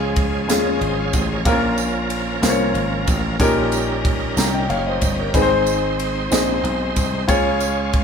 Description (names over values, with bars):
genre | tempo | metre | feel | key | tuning
slow gospel | 62 BPM (dotted quarters) | 6/8 | straight | Db major | A4 = 440 Hz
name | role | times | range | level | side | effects
warm grand piano | accompaniment | 0.0-8.0 s | Ab2 to Bb5 | -20 LUFS | left 2 dB | none
bright tonewheel organ | sustained chords | 0.0-8.0 s | F3 to F5 | -25 LUFS | right 2 dB | slow rotary speaker, chorus vibrato
dry thumbed slap bass | bass | 0.0-8.0 s | Gb1 to Eb2 | -25 LUFS | equal | none
crisp fusion drum kit | drums | 0.2-8.0 s | kick drum, ride cymbal, snare drum | -23 LUFS | right 1 dB | none
tambourine | percussion | 0.5-7.9 s | none | -30 LUFS | right 7 dB | none
room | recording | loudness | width
moderate studio reverb, RT60 0.7 s | band playing live in one room | -17 LUFS | side -6 dB against mid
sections
0.0-8.0 A section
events
none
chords
0.0 Db; 1.5 Bbm; 3.4 Eb7/Bb; 5.3 Ab; 7.3 Db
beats
0.48 | 1.46 2.43 | 3.40 4.37 | 5.34 6.32 | 7.29